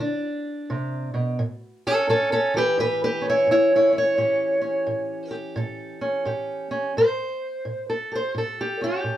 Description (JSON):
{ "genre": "acoustic country blues, solo or duo", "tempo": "86 BPM", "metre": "4/4", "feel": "swing 64% on 8ths", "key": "A mixolydian", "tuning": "A4 = 439 Hz", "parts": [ { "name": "fingerpicked steel-string acoustic guitar", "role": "solo", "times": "0.0-9.2 s", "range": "A2 to C#5", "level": "-21 LUFS", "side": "equal", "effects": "none" } ], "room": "moderate studio ambience, RT60 0.5 s", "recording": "none", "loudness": "-21 LUFS", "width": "side -12 dB against mid", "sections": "0.0-7.0 A section; 7.0-9.2 B section", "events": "steel-string acoustic guitar solo 0.0-7.0", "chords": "0.0 Bmadd11; 1.4 A7" }